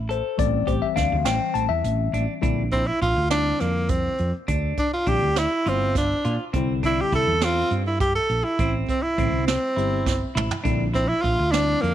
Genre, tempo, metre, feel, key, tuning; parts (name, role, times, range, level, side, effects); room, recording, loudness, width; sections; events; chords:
progressive instrumental, band music in an uneven meter; 205 BPM (eighths); 7/8; straight; A4 = 440 Hz
woody fretless electric bass; bass; 0.0-11.9 s; G1 to Bb2; -25 LUFS; right 1 dB
tine electric piano; accompaniment; 0.1-11.9 s; D3 to A5; -27 LUFS; left 11 dB
clean electric guitar; arpeggios; 0.1-11.9 s; C4 to A4; -31 LUFS; right 1 dB
jazz brush drum kit; drums; 0.1-11.9 s; hi-hat, kick drum, snare drum, toms; -28 LUFS; right 3 dB
bright tenor saxophone; melody; 2.7-11.9 s; Bb3 to A4; -23 LUFS; right 1 dB
light reverb, small room ambience; 1960s-style stereo; -20 LUFS; side -11 dB against mid
0.0-2.4 A section; 2.4-11.9 B section
tine electric piano solo 0.0-2.4; drum fill 10.1-10.7
0.4 Am7; 2.4 Bbadd9; 6.5 C; 8.6 Am; 10.7 Bbadd9